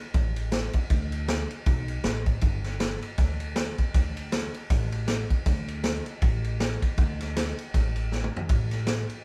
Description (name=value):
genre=rockabilly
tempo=158 BPM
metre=4/4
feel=swing 58% on 8ths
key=unclear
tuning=A4 = 441 Hz
part: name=upright bass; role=bass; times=0.1-9.0 s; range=G1 to D2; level=-33 LUFS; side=equal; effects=none
part: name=vintage drum kit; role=drums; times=0.1-9.2 s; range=kick drum, ride cymbal, snare drum, toms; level=-28 LUFS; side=equal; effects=none
room=light reverb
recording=band playing live in one room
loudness=-27 LUFS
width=mono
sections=0.0-9.2 A section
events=drum fill 8.1-8.5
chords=none